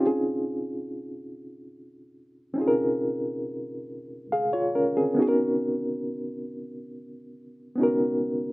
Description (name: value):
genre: R&B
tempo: 46 BPM (dotted quarters)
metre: 6/8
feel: straight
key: Db major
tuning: A4 = 445 Hz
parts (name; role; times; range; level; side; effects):
- bright reed electric piano; solo; 0.0-8.5 s; Cb4 to F5; -25 LUFS; equal; fast tremolo
room: moderate studio reverb, RT60 0.6 s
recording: rough home demo mix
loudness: -24 LUFS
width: side -21 dB against mid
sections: 0.0-8.5 A section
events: none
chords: 0.0 Dbmaj9; 5.2 Cbmaj9